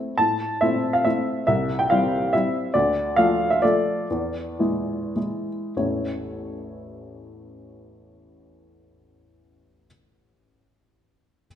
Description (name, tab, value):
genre	classical, piano waltz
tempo	93-148 BPM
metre	3/4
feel	rubato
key	unclear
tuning	A4 = 440 Hz
part	warm upright piano	solo	0.0-11.5 s	A1 to A5	-21 LUFS	equal	none
room	moderate recital hall reverb, RT60 1.4 s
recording	minimal, uncompressed stereo recording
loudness	-20 LUFS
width	side -10 dB against mid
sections	0.2-5.8 A section; 5.8-9.3 B section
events	slowing down 2.1-5.8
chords	0.2 Am; 1.5 C; 2.7 Dm; 4.1 E7; 5.8 A